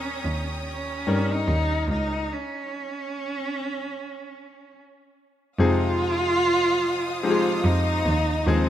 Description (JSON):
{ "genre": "pop", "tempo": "73 BPM", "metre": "4/4", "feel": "straight", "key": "unclear", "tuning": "A4 = 441 Hz", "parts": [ { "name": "warm cello", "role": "melody", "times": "0.0-8.7 s", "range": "C4 to F4", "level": "-25 LUFS", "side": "right 1 dB", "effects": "none" }, { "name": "bright grand piano", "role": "accompaniment", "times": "0.0-8.7 s", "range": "Bb2 to Bb4", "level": "-28 LUFS", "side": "left 4 dB", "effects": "none" }, { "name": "rich studio string section", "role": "sustained chords", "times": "0.0-8.7 s", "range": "C5 to Eb6", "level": "-35 LUFS", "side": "equal", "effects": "none" }, { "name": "rich cello", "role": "bass", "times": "0.0-8.7 s", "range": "Db2 to G2", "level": "-25 LUFS", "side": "right 1 dB", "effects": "none" } ], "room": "light reverb, studio ambience", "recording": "rough home demo mix", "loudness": "-22 LUFS", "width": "side -11 dB against mid", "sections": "0.0-5.6 A section; 5.6-8.7 B section", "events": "stop 2.3-5.6", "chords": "0.0 Eb7; 5.6 Fm7" }